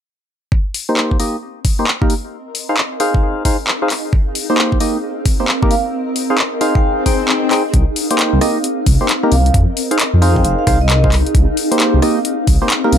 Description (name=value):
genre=UK garage, two-step garage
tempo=133 BPM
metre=4/4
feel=swing 64% on 16ths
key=C minor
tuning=A4 = 440 Hz
part: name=electronic kick drum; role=drums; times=0.5-12.6 s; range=none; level=-15 LUFS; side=equal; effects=overdrive
part: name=granular cloud pad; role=texture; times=1.5-13.0 s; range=C4 to F5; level=-22 LUFS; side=left 1 dB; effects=built-in reverb, sidechain pumping
part: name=punchy analog drum machine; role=drums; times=0.7-13.0 s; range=handclaps, hi-hat, rim click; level=-19 LUFS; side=left 2 dB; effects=overdrive
part: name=percussive organ stab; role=stabs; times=0.9-13.0 s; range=Bb3 to G5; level=-18 LUFS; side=equal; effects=chorus, ping-pong delay
part: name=vibraphone with soft mallets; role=melody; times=5.7-13.0 s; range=Eb5 to G5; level=-22 LUFS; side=right 3 dB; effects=ping-pong delay
part: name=swell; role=sound effects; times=7.0-7.7 s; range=none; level=-20 LUFS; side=left 5 dB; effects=none
part: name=dark detuned saw bass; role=bass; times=7.7-13.0 s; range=F1 to F2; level=-13 LUFS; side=equal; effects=none
room=light reverb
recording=none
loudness=-13 LUFS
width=side -9 dB against mid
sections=0.5-7.7 A section; 7.7-13.0 B section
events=fade-in on ambient pad 0.5-7.7; filter sweep on synth stab 0.5-7.7; swell 7.0-7.7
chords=0.5 Cm7; 2.3 Fm7; 4.1 Cm7; 5.9 Fm7; 7.7 Cm7; 9.5 Fm7; 11.3 Cm7